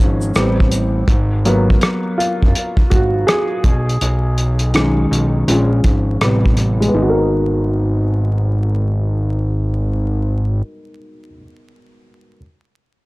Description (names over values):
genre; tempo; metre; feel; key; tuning
lo-fi hip hop; 82 BPM; 4/4; swing 62% on 16ths; G# dorian; A4 = 439 Hz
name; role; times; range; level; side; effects
warm upright piano; accompaniment; 0.0-12.4 s; C3 to C#5; -19 LUFS; equal; cassette tape, low-pass filter
fat analog bass; bass; 0.0-10.6 s; F#1 to B1; -17 LUFS; equal; none
tube shaker; percussion; 0.2-0.9 s; none; -35 LUFS; equal; none
cloth-damped thuddy drum kit; drums; 0.4-6.9 s; hi-hat, kick drum, rim click; -16 LUFS; equal; none
room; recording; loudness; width
studio reverb; dry, gritty hardware recording, vinyl crackle; -14 LUFS; side -22 dB against mid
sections
0.0-6.9 A section; 6.9-9.9 B section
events
upright piano solo 0.0-6.9; filter sweep on upright piano 0.0-6.9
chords
0.3 Am9; 1.1 G#m9; 3.6 B69; 5.5 A#m7; 6.2 Am9; 6.9 G#m9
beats
0.35 | 1.08 1.81 2.54 3.27 | 4.01 4.74 5.47 6.20 | 6.93 7.67 8.40 9.13